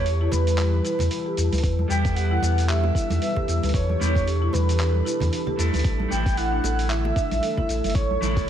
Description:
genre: organic downtempo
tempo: 114 BPM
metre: 4/4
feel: swing 57% on 16ths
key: E dorian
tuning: A4 = 444 Hz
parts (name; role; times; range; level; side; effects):
- breathy flute-like synth lead; melody; 0.0-8.5 s; B4 to G5; -28 LUFS; right 1 dB; tremolo, analog chorus, ping-pong delay
- electric guitar at the edge of break-up; accompaniment; 0.0-8.4 s; G3 to A4; -32 LUFS; right 3 dB; lush chorus, sidechain pumping, ping-pong delay
- ethereal airy pad; sustained chords; 0.0-8.5 s; B2 to A4; -32 LUFS; left 3 dB; ensemble chorus, built-in reverb, sidechain pumping
- warm sub bass; bass; 0.0-8.5 s; G1 to E2; -23 LUFS; equal; none
- wind-like tuned noise texture; texture; 0.0-8.5 s; A4; -39 LUFS; right 7 dB; built-in reverb
- marimba with soft mallets; arpeggios; 0.1-8.1 s; D4 to B4; -31 LUFS; left 1 dB; ping-pong delay
- dusty soul sampler-style drum kit; drums; 0.1-8.5 s; handclaps, hi-hat, shaker; -33 LUFS; equal; none
- bongos and congas; percussion; 0.3-8.5 s; none; -34 LUFS; right 4 dB; none
- electronic kick drum; drums; 1.6-8.5 s; none; -24 LUFS; equal; overdrive
room: little or no reverb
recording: none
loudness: -20 LUFS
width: side -10 dB against mid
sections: 0.0-8.5 A section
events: none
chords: 0.0 Em; 5.8 Asus4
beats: 0.06 0.58 1.11 | 1.64 2.16 2.69 3.22 | 3.74 4.27 4.80 5.32 | 5.85 6.37 6.90 7.43 | 7.95 8.48

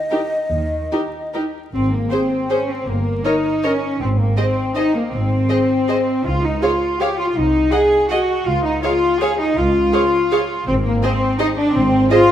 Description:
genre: classical, orchestral ballroom waltz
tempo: 140-177 BPM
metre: 3/4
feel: rubato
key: Ab major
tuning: A4 = 440 Hz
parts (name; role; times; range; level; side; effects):
- mellow hollow concert flute; second line; 0.0-1.3 s; Eb5; -23 LUFS; equal; none
- warm symphonic violin section; melody; 0.1-12.2 s; Bb4 to Gb5; -29 LUFS; left 4 dB; none
- warm chamber violin section; second line; 0.1-12.2 s; G4 to Eb5; -26 LUFS; left 1 dB; none
- dark symphonic viola section; accompaniment; 0.1-12.2 s; Eb4 to Bb4; -24 LUFS; right 4 dB; none
- rich symphonic cello section; bass; 0.5-12.3 s; Eb3 to Ab4; -20 LUFS; right 1 dB; none
- warm symphonic double bass section; bass; 0.5-12.0 s; G1 to Eb2; -22 LUFS; right 1 dB; none
- warm French horn section; sustained chords; 1.7-12.3 s; Bb3 to Ab4; -20 LUFS; left 3 dB; none
room: moderate scoring stage reverb, RT60 1.4 s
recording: minimal, uncompressed stereo recording, vinyl crackle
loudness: -16 LUFS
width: side -10 dB against mid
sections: 0.0-1.7 A section; 1.7-12.3 B section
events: none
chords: 0.0 N.C.; 1.7 Ab; 2.9 Eb7/G; 4.0 Ab; 6.2 Db; 7.4 Ab7/C; 8.5 Db; 10.7 Ab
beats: 0.12 | 0.52 0.92 1.34 | 1.74 2.12 2.50 | 2.87 3.25 3.64 | 4.00 4.37 4.76 | 5.12 5.50 5.88 | 6.25 6.62 7.00 | 7.36 7.72 8.10 | 8.46 8.83 9.21 | 9.57 9.93 10.31 | 10.67 11.02 11.39 | 11.75 12.11

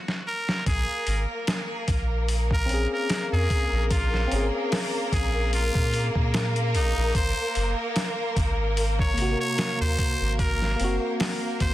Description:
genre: trip hop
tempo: 74 BPM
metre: 4/4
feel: swing 55% on 16ths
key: Bb minor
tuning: A4 = 440 Hz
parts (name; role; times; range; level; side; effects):
- boom bap sampler-style drum kit; drums; 0.1-11.7 s; hi-hat, kick drum, snare drum; -27 LUFS; equal; none
- trumpet with straight mute; melody; 0.3-11.7 s; Eb4 to Db5; -30 LUFS; equal; tape echo
- rich studio violin section; sustained chords; 0.7-11.7 s; Bb3 to Bb4; -30 LUFS; equal; none
- soft dub sub bass; bass; 0.7-11.7 s; Gb1 to Bb2; -26 LUFS; equal; none
- tine electric piano; accompaniment; 2.7-11.7 s; C3 to Ab4; -31 LUFS; left 2 dB; overdrive, harmonic tremolo, tape echo
room: digital ambience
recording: dense, heavily limited modern master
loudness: -22 LUFS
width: side -14 dB against mid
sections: 0.7-11.7 A section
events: break 0.0-0.7; drum fill 0.0-0.7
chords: 0.0 N.C.; 0.7 Bbm7; 7.1 Ab7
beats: | 0.66 1.47 2.28 3.09 | 3.90 4.71 5.52 6.33 | 7.15 7.96 8.77 9.58 | 10.39 11.20

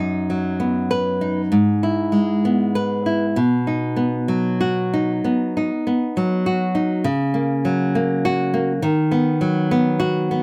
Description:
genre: romantic piece for solo classical guitar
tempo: 63-69 BPM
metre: 4/4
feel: rubato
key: unclear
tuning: A4 = 438 Hz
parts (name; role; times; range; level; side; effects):
- nylon-string guitar; solo; 0.0-10.4 s; F#2 to B4; -20 LUFS; equal; none
room: light reverb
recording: none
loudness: -20 LUFS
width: mono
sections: 0.0-10.4 A section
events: none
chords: 0.0 B/F#; 1.5 E/G#; 3.4 B; 7.0 F#/C#; 8.8 B/D#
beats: 0.60 1.54 2.47 | 3.39 4.31 5.24 6.16 | 7.04 7.95 8.83 9.71

